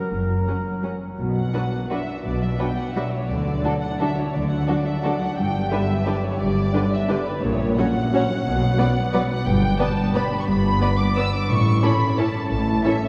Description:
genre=classical, orchestral ballroom waltz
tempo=159-192 BPM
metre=3/4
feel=rubato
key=B minor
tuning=A4 = 439 Hz
part: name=warm oboe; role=second line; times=0.0-1.0 s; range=A#4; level=-36 LUFS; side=equal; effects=none
part: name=concert harp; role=arpeggios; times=0.0-13.1 s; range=F#2 to D5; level=-29 LUFS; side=equal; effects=none
part: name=muted studio cello section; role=bass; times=0.1-12.8 s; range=F#2 to D3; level=-29 LUFS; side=equal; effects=none
part: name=muted symphonic double bass section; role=bass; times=0.1-12.8 s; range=F#1 to D2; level=-28 LUFS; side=equal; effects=none
part: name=muted studio violin section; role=melody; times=0.5-13.1 s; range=B4 to E6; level=-30 LUFS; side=equal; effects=none
part: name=muted studio violin section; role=second line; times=0.5-12.9 s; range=C#4 to D5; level=-33 LUFS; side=equal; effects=none
part: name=muted studio viola section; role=accompaniment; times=0.5-12.9 s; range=D3 to E4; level=-30 LUFS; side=equal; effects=none
room=wet cathedral reverb, RT60 4.4 s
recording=heard from further back in the room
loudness=-22 LUFS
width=mono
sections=0.0-1.2 A section; 1.2-13.1 B section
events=none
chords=0.0 F#; 1.2 Bm; 3.3 D; 5.4 G; 7.4 F#/A#; 8.5 Bm; 9.5 G; 11.5 A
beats=| 0.12 0.47 0.83 | 1.18 1.54 1.91 | 2.25 2.60 2.96 | 3.30 3.65 4.01 | 4.35 4.69 5.05 | 5.38 5.71 6.07 | 6.40 6.74 7.08 | 7.42 7.78 8.13 | 8.46 8.78 9.13 | 9.46 9.80 10.15 | 10.48 10.82 11.17 | 11.50 11.83 12.18 | 12.51 12.85

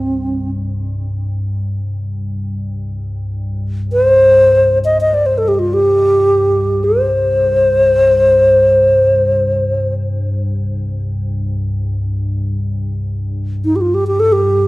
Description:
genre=world meditative, free-time meditation music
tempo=free time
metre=none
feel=none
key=unclear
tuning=A4 = 445 Hz
part: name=breathy bass flute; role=melody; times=0.0-14.7 s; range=C4 to Eb5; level=-11 LUFS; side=equal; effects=cassette tape, plate reverb
part: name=glassy FM pad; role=drone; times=0.0-14.7 s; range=C2 to G2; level=-19 LUFS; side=left 1 dB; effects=ensemble chorus, built-in reverb, cassette tape
room=wet studio reverb, RT60 0.6 s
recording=home recording on cassette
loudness=-12 LUFS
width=side -20 dB against mid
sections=0.0-2.4 A section; 2.4-14.7 A section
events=none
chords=none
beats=free time

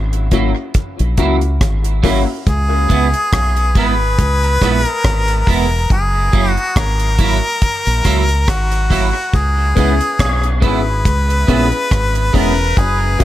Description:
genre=dub reggae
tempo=70 BPM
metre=4/4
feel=swing 56% on 16ths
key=C# dorian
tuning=A4 = 441 Hz
part: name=deep dub fingered electric bass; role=bass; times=0.0-13.2 s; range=E1 to C#2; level=-16 LUFS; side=equal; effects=none
part: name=deep reggae drum kit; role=drums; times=0.1-13.2 s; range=hi-hat, kick drum, rim click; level=-17 LUFS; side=equal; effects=none
part: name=clean electric guitar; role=accompaniment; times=0.3-13.2 s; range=F#3 to E4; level=-22 LUFS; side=right 7 dB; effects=ensemble chorus, dub echo
part: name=dark upright piano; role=stabs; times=0.3-2.2, 9.8-13.2 s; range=A#3 to G#4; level=-22 LUFS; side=left 5 dB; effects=dub echo
part: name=clear harmonica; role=melody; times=2.5-13.2 s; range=F#4 to B4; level=-18 LUFS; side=left 1 dB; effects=dub echo
room=light reverb, small room ambience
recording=none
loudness=-12 LUFS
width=side -13 dB against mid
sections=0.0-13.2 A section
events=break 0.0-2.5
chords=0.0 F#7; 2.5 C#m7; 5.9 F#7; 9.3 C#m7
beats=0.75 1.61 | 2.47 3.33 4.18 5.04 | 5.90 6.76 7.62 8.48 | 9.34 10.19 11.05 11.91 | 12.77

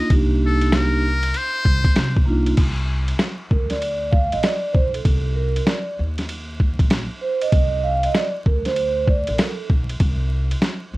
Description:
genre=hip hop, jazz-hop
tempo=97 BPM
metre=4/4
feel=swing 66% on 16ths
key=C dorian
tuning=A4 = 439 Hz
part: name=trumpet with metal mute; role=melody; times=0.0-2.3 s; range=A4 to Eb5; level=-23 LUFS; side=left 2 dB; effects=none
part: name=vibraphone with soft mallets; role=accompaniment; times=0.0-9.7 s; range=Bb3 to F5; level=-22 LUFS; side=right 3 dB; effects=none
part: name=upright bass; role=bass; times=0.1-11.0 s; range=Bb1 to C3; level=-23 LUFS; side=equal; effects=none
part: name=boom bap sampler-style drum kit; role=drums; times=0.1-10.8 s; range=crash cymbal, hi-hat, kick drum, ride cymbal, snare drum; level=-20 LUFS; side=equal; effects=vintage 12-bit sampler grit
room=light reverb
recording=vinyl crackle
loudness=-17 LUFS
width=side -19 dB against mid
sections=0.0-2.6 A section; 2.6-11.0 B section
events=vibraphone solo 2.6-11.0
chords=0.0 Cm9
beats=| 0.10 0.72 1.34 1.96 | 2.58 3.20 3.82 4.43 | 5.05 5.67 6.29 6.91 | 7.53 8.15 8.77 9.38 | 10.00 10.62

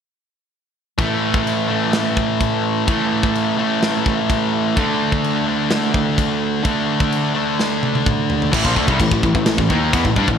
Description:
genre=heavy metal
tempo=127 BPM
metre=4/4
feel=straight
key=unclear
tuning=A4 = 440 Hz
part: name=heavy high-gain guitar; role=riff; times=1.0-10.4 s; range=A2 to D#4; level=-20 LUFS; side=left 8 dB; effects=distortion
part: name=sludgy distorted guitar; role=riff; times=1.0-10.4 s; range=A2 to D#4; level=-21 LUFS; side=right 8 dB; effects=overdrive
part: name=tight metal drum kit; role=drums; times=1.0-10.4 s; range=china cymbal, crash cymbal, kick drum, snare drum, toms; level=-22 LUFS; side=equal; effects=gated reverb
part: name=distorted electric guitar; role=riff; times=8.5-10.4 s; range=A2 to D#4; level=-23 LUFS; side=left 1 dB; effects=overdrive
part: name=fuzz picked electric bass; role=bass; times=8.5-10.4 s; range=A1 to G2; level=-22 LUFS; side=equal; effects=overdrive
room=moderate lush hall reverb, RT60 1.6 s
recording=bright 1980s-style digital production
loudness=-16 LUFS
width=side -7 dB against mid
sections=1.0-8.5 A section; 8.5-10.4 B section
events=drum fill 7.6-8.5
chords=1.0 A5; 4.8 D5; 8.5 Am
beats=| 0.99 1.46 1.94 2.41 | 2.88 3.35 3.83 4.30 | 4.77 5.24 5.71 6.18 | 6.65 7.12 7.59 8.06 | 8.53 8.99 9.46 9.92

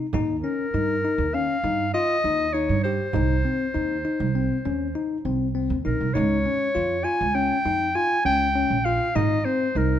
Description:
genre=contemporary instrumental, chamber music in an uneven meter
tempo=100 BPM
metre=5/4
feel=straight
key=Eb mixolydian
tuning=A4 = 439 Hz
part: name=bell-like tine electric piano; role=arpeggios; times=0.0-10.0 s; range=C4 to G4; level=-26 LUFS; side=left 4 dB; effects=none
part: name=upright bass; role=bass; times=0.1-10.0 s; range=Ab1 to G2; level=-26 LUFS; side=right 4 dB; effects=none
part: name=frame drum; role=percussion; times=0.1-9.4 s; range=none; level=-31 LUFS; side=right 5 dB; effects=none
part: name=clear clarinet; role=melody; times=0.4-10.0 s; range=Bb4 to Ab5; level=-24 LUFS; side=left 1 dB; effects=none
room=moderate recital hall reverb, RT60 1.6 s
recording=none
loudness=-21 LUFS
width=side -10 dB against mid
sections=0.0-10.0 A section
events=none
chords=0.1 Eb7; 3.1 Cm; 6.1 Db; 9.2 Abadd9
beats=| 0.13 0.73 1.33 1.93 2.54 | 3.14 3.74 4.34 4.94 5.55 | 6.15 6.75 7.35 7.95 8.56 | 9.16 9.76

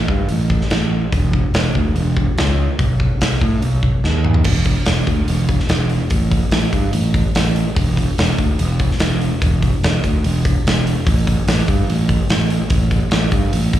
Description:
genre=blues rock power trio and southern rock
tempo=145 BPM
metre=4/4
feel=straight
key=unclear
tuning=A4 = 445 Hz
part: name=fuzz fingered electric bass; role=bass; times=0.0-13.8 s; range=E1 to A2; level=-17 LUFS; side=equal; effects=overdrive
part: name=big rock drum kit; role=drums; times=0.1-13.8 s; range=crash cymbal, hi-hat, kick drum, snare drum, toms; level=-18 LUFS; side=equal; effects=none
room=little or no reverb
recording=live gig heard through the venue's PA, club reverb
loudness=-14 LUFS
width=side -12 dB against mid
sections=0.0-4.5 A section; 4.5-13.8 B section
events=drum fill 4.0-4.5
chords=none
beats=0.30 0.72 | 1.13 1.55 1.96 2.38 | 2.79 3.21 3.62 4.04 | 4.45 4.87 5.28 5.70 | 6.11 6.52 6.94 7.35 | 7.76 8.18 8.59 9.00 | 9.41 9.83 10.24 10.65 | 11.06 11.47 11.89 12.30 | 12.71 13.12 13.53

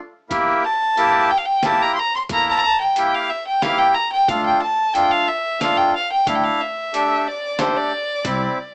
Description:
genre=klezmer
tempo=91 BPM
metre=3/4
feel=straight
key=D minor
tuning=A4 = 439 Hz
part: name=accordion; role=accompaniment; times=0.3-8.6 s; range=G3 to A4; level=-20 LUFS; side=equal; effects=none
part: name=upright bass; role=bass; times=0.3-8.5 s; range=C2 to E2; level=-30 LUFS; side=equal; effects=none
part: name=trip hop sampler-style drum kit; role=drums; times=0.3-8.4 s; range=hi-hat, kick drum, snare drum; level=-28 LUFS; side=equal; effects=none
part: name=clear violin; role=melody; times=0.6-8.7 s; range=C5 to C6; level=-18 LUFS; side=equal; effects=none
room=light reverb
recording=small speaker sound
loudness=-16 LUFS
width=side -36 dB against mid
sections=0.0-8.7 A section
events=violin solo 0.0-8.7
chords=0.3 Edim; 4.3 Dm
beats=| 0.32 0.98 1.65 | 2.31 2.97 3.64 | 4.30 4.96 5.62 | 6.28 6.94 7.60 | 8.26

